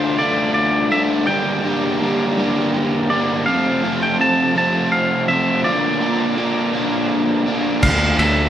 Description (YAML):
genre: indie rock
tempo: 55 BPM (dotted quarters)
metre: 6/8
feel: straight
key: D minor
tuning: A4 = 443 Hz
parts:
  - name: twangy electric guitar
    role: melody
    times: 0.0-8.5 s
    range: C5 to A5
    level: -20 LUFS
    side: equal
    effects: none
  - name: warm analog pad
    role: sustained chords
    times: 0.0-8.5 s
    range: F4 to Bb5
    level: -28 LUFS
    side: left 1 dB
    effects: chorus
  - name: crunchy overdriven guitar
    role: riff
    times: 0.0-8.5 s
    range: F2 to G4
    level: -18 LUFS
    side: equal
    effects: none
  - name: fuzz fingered electric bass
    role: bass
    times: 7.8-8.5 s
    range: D2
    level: -20 LUFS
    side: equal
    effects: overdrive
  - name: cloth-damped thuddy drum kit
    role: drums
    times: 7.8-8.4 s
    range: crash cymbal, kick drum, ride cymbal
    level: -20 LUFS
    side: right 1 dB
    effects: none
room: moderate recital hall reverb, RT60 1.6 s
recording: recorded in a church or concert hall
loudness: -16 LUFS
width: side -10 dB against mid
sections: 0.0-8.5 A section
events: none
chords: 0.0 Dm; 1.3 Gm; 3.5 F; 5.7 Bb; 7.8 Dm